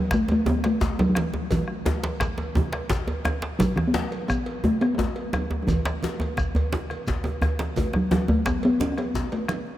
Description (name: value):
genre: west african traditional, West African drum ensemble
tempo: 115 BPM (dotted quarters)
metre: 12/8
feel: straight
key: A major pentatonic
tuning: A4 = 439 Hz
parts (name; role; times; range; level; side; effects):
- talking drum; melody; 0.0-9.8 s; E3 to C#4; -25 LUFS; equal; none
- bombo; percussion; 0.1-9.7 s; none; -32 LUFS; left 1 dB; none
- djembe; percussion; 0.1-8.6 s; none; -27 LUFS; right 1 dB; none
- shekere; percussion; 0.1-9.3 s; none; -40 LUFS; left 1 dB; none
- cowbell; percussion; 0.3-9.7 s; none; -37 LUFS; right 3 dB; none
- congas; percussion; 0.5-9.7 s; none; -35 LUFS; right 4 dB; none
- djembe; percussion; 0.5-9.8 s; none; -33 LUFS; left 3 dB; none
room: moderate cathedral reverb, RT60 6.0 s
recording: in a vast, echoing space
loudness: -22 LUFS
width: side -13 dB against mid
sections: 0.0-9.8 A section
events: drum fill 6.9-7.8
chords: none